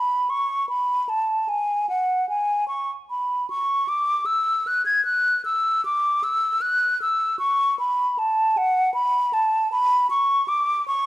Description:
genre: classical, baroque-style fantasia for unaccompanied flute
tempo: 77 BPM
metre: 4/4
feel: rubato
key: unclear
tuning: A4 = 440 Hz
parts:
  - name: mellow hollow silver concert flute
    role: solo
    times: 0.0-11.1 s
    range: F#5 to G#6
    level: -20 LUFS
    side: equal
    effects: none
room: moderate recital hall reverb, RT60 1.5 s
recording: dark, warm production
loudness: -20 LUFS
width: side -16 dB against mid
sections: 0.0-11.1 A section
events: none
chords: none

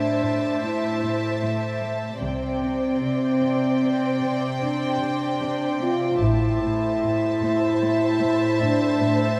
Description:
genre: cinematic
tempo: 75 BPM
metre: 5/4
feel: straight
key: A minor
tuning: A4 = 440 Hz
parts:
  - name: warm studio violin section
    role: melody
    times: 0.0-9.4 s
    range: G5 to A5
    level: -36 LUFS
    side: equal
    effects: none
  - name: warm symphonic violin section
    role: second line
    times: 0.0-9.4 s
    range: D5 to E5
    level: -32 LUFS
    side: equal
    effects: none
  - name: dark symphonic viola section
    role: accompaniment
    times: 0.0-9.4 s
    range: C5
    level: -34 LUFS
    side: equal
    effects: none
  - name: mellow French horn section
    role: sustained chords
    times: 0.0-9.2 s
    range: C4 to F4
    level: -26 LUFS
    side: equal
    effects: none
  - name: warm studio cello section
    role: riff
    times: 0.0-9.3 s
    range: A2 to C4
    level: -34 LUFS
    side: equal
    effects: none
  - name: warm symphonic cello section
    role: bass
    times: 0.0-9.4 s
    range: A2 to C3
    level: -32 LUFS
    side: equal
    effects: none
  - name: warm studio violin section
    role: texture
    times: 0.0-9.4 s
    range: G5 to G6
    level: -42 LUFS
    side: equal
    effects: none
  - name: dark symphonic double bass section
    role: bass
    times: 2.2-7.0 s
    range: A1 to C2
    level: -30 LUFS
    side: equal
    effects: none
room: wet concert hall reverb, RT60 2.2 s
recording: none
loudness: -23 LUFS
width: mono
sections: 0.0-9.4 A section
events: none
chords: 0.0 Am; 2.2 Csus2; 6.2 Am

